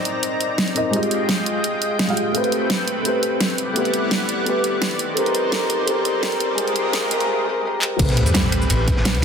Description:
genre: liquid drum and bass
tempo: 170 BPM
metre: 4/4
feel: swing 53% on 16ths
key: unclear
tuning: A4 = 440 Hz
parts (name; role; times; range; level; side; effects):
- felt-muted upright piano; accompaniment; 0.0-9.2 s; G3 to F5; -22 LUFS; equal; ping-pong delay
- lush unison pad; sustained chords; 0.0-9.2 s; G3 to Bb5; -25 LUFS; equal; chorus, sidechain pumping
- pop drum kit; drums; 0.1-9.2 s; crash cymbal, handclaps, hi-hat, shaker, snare drum; -23 LUFS; right 1 dB; studio ambience
- riser and sub drop; sound effects; 4.8-9.2 s; none; -29 LUFS; equal; none
- upright bass; bass; 8.0-9.2 s; A1 to E2; -20 LUFS; equal; tube saturation
- crunchy breakbeat drum kit; drums; 8.0-9.2 s; ride cymbal, snare drum; -28 LUFS; equal; high-pass filter on cymbals, studio ambience, high-pass filter on snare, high-pass filter on room
- electronic kick drum; drums; 8.0-9.0 s; none; -21 LUFS; equal; studio ambience
room: wet plate reverb, RT60 1.5 s, small room reverb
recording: dense, heavily limited modern master, high-pass filter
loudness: -18 LUFS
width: side -6 dB against mid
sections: 0.0-8.0 A section; 8.0-9.2 B section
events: build-up 0.0-8.0; riser 4.8-7.3; drum fill 7.8; drop 8.0-9.2; impact 8.0-9.2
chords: 0.0 Cm9; 0.9 Fm9; 2.3 Am9; 3.6 Em9; 5.0 Cm9; 6.6 Fm9; 8.0 Am9

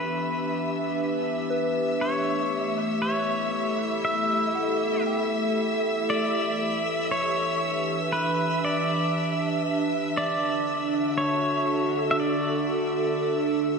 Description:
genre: ambient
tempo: 59 BPM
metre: 4/4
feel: straight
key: E dorian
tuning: A4 = 441 Hz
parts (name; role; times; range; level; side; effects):
- pedal steel guitar; melody; 0.0-13.7 s; B4 to E5; -28 LUFS; equal; tape echo
- warbly tape-like pad; sustained chords; 0.0-13.8 s; D3 to E5; -26 LUFS; right 1 dB; chorus, built-in reverb
- soft synth bell; arpeggios; 0.0-13.8 s; F#4 to G5; -37 LUFS; equal; none
- bowed-like drone; drone; 0.0-13.8 s; E3 to B3; -39 LUFS; left 6 dB; built-in reverb
- muted chamber violin section; texture; 0.0-13.8 s; E5 to E6; -31 LUFS; right 1 dB; none
room: wet concert hall reverb, RT60 2.1 s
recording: none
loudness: -23 LUFS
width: side -5 dB against mid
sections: 0.0-13.8 A section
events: fade-out on synth drone 0.0-13.8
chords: 0.0 Em7; 2.0 A7; 6.1 Em7; 10.2 Dmaj7

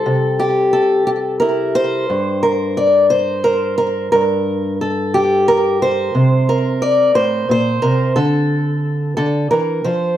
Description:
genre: folk, solo fingerstyle acoustic guitar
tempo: 59 BPM (dotted quarters)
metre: 6/8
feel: straight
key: unclear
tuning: A4 = 438 Hz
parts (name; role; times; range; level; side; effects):
- fingerpicked acoustic archtop guitar; solo; 0.0-10.2 s; G2 to D5; -14 LUFS; equal; slapback echo
room: light reverb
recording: dark, warm production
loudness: -14 LUFS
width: side -11 dB against mid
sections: 0.0-2.1 A section; 2.1-10.2 B section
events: none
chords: 0.0 C; 2.1 N.C.; 6.2 Bbmaj9; 8.2 Dm

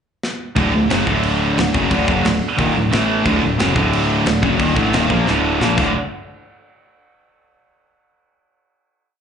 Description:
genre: heavy metal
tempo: 178 BPM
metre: 4/4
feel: straight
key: unclear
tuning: A4 = 436 Hz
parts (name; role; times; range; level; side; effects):
- tight metal drum kit; drums; 0.2-5.9 s; crash cymbal, kick drum, snare drum; -22 LUFS; equal; none
- dark analog pad; sustained chords; 1.2-5.9 s; D4 to F#5; -30 LUFS; left 3 dB; chorus, phaser
- heavy high-gain guitar; riff; 0.6-5.9 s; D2 to Bb3; -20 LUFS; right 8 dB; distortion
- raw garage guitar; riff; 0.6-5.9 s; D2 to Bb3; -22 LUFS; equal; overdrive, slapback echo
- sludgy distorted guitar; riff; 0.6-5.9 s; D2 to Bb3; -22 LUFS; left 8 dB; overdrive
- picked electric bass; bass; 0.6-5.9 s; D1 to Bb1; -22 LUFS; equal; none
room: light reverb, studio reverb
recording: live gig heard through the venue's PA, club reverb, nothing above 10.4 kHz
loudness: -14 LUFS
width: side -7 dB against mid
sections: 0.0-0.6 pickup bar; 0.6-5.9 riff; 5.9-7.3 final hit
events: drum fill 0.2-0.6, 5.3-5.9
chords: 0.0 N.C.; 0.6 D; 2.9 A5; 3.3 D; 5.6 Bb5; 5.8 D; 5.9 N.C.

